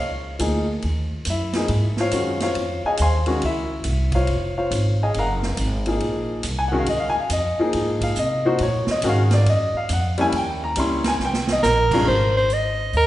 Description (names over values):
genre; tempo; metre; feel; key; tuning
modal jazz; 139 BPM; 4/4; swing 66% on 8ths; Db major; A4 = 440 Hz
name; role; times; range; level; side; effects
warm baby grand piano; accompaniment; 0.0-12.1 s; G2 to C6; -22 LUFS; left 1 dB; none
upright bass; bass; 0.0-13.1 s; F1 to C3; -23 LUFS; equal; none
swinging big-band drum kit; drums; 0.4-13.1 s; crash cymbal, hi-hat, kick drum, ride cymbal, snare drum; -30 LUFS; right 2 dB; none
breathy soprano saxophone; melody; 11.6-13.1 s; Bb4 to Eb5; -18 LUFS; right 1 dB; none
room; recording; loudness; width
wet recital hall reverb, RT60 1.6 s; recorded in a church or concert hall, nothing above 10.5 kHz; -19 LUFS; side -14 dB against mid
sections
0.0-12.1 A section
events
drum fill 11.2-11.6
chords
0.0 Dbmaj9; 5.2 Gbmaj9; 10.3 Eb7b9; 12.1 Ab